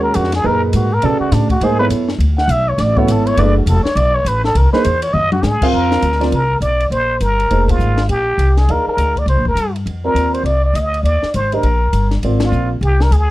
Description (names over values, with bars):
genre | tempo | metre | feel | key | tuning
modal jazz | 203 BPM | 4/4 | swing 62% on 8ths | F dorian from 5.7 s | A4 = 443 Hz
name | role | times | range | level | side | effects
trumpet with plunger mute | melody | 0.0-13.3 s | D4 to F#5 | -17 LUFS | equal | none
dark concert grand piano | accompaniment | 0.0-12.7 s | A#2 to E#5 | -18 LUFS | right 3 dB | none
upright bass | bass | 0.0-13.3 s | E1 to B2 | -16 LUFS | equal | none
compact cocktail drum kit | drums | 0.1-13.2 s | crash cymbal, hi-hat, kick drum, ride cymbal, snare drum, toms | -24 LUFS | left 2 dB | none
room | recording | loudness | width
little or no reverb | dark, warm production | -13 LUFS | side -16 dB against mid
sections
0.0-5.7 A section; 5.7-13.3 B section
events
muted trumpet solo 0.0-5.7; drum fill 5.1; band accent 7.6, 12.4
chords
0.0 G#m9; 1.0 Bm9; 4.5 C7b13; 5.7 F9sus4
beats
0.14 0.44 0.73 | 1.02 1.32 1.61 1.91 | 2.20 2.49 2.79 3.08 | 3.37 3.67 3.96 4.25 | 4.55 4.84 5.14 5.43 | 5.73 6.02 6.32 6.61 | 6.91 7.20 7.50 7.79 | 8.09 8.38 8.68 8.97 | 9.27 9.57 9.86 10.16 | 10.45 10.75 11.04 11.34 | 11.64 11.93 12.23 12.52 | 12.82 13.12